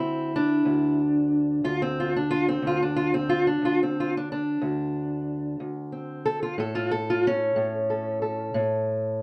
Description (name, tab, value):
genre	acoustic country blues, solo or duo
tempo	61 BPM (dotted quarters)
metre	12/8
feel	straight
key	unclear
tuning	A4 = 440 Hz
part	fingerpicked steel-string acoustic guitar	solo	0.0-9.2 s	D2 to A4	-26 LUFS	equal	none
room	moderate studio reverb, RT60 0.7 s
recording	dark, warm production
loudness	-26 LUFS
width	mono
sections	0.0-9.2 A section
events	none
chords	0.0 D5; 6.6 A